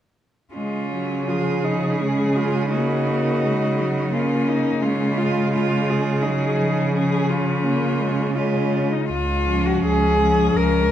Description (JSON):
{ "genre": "classical, lyrical piece for cello ensemble", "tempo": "84 BPM", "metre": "3/4", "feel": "rubato", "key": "Db major", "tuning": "A4 = 444 Hz", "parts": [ { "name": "clear cello", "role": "melody", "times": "0.5-10.9 s", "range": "Db4 to Bb4", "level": "-24 LUFS", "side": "left 3 dB", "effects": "none" }, { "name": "clear cello", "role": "second line", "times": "0.5-10.9 s", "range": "Db4 to F4", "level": "-25 LUFS", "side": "right 4 dB", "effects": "none" }, { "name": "rich cello", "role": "bass", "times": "0.5-10.9 s", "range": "Db2 to Db3", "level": "-23 LUFS", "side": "right 2 dB", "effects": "none" }, { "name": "clear cello", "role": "accompaniment", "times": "0.6-10.9 s", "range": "F3 to Bb3", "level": "-24 LUFS", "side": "left 2 dB", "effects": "none" } ], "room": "moderate scoring stage reverb, RT60 1.6 s", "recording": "dark, warm production", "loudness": "-18 LUFS", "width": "side -11 dB against mid", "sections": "0.5-9.1 A section; 9.1-10.9 B section", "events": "none", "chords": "0.5 Db; 2.7 Ebm7/Db; 9.1 Db" }